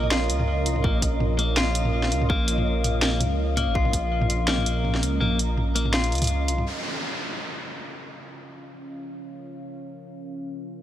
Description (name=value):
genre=half-time drum and bass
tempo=165 BPM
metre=4/4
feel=swing 55% on 16ths, half-time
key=Bb minor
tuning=A4 = 437 Hz
part: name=deep dark ambient pad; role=sustained chords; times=0.0-10.8 s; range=Db4 to Bb5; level=-32 LUFS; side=equal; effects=chorus, built-in reverb, sidechain pumping
part: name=clean electric guitar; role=arpeggios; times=0.0-6.6 s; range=Bb3 to F4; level=-29 LUFS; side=left 4 dB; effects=vintage 12-bit sampler grit, tape echo
part: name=dark detuned saw bass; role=bass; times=0.0-6.7 s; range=Ab1 to Db2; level=-25 LUFS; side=equal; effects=none
part: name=drum and bass drum kit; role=drums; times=0.0-6.6 s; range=hi-hat, snare drum, toms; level=-26 LUFS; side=equal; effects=none
part: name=flickering grainy texture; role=texture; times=0.0-6.7 s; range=Eb5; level=-36 LUFS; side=right 3 dB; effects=built-in reverb
part: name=electronic kick drum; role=drums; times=0.8-4.0 s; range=none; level=-24 LUFS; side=equal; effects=overdrive
part: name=downlifter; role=sound effects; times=6.7-9.6 s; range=none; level=-33 LUFS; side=equal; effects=none
room=light reverb, digital ambience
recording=none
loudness=-21 LUFS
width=side -12 dB against mid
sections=0.0-6.7 A section; 6.7-10.8 B section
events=drop 0.0-6.7; kick drops out 5.2-6.7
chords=0.0 Bbm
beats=0.12 0.48 | 0.85 1.21 1.57 1.94 | 2.30 2.66 3.03 3.39 | 3.75 4.12 4.48 4.85 | 5.21 5.57 5.94 6.30 | 6.66 7.03 7.39 7.75 | 8.12 8.48 8.85 9.21 | 9.57 9.94 10.30 10.66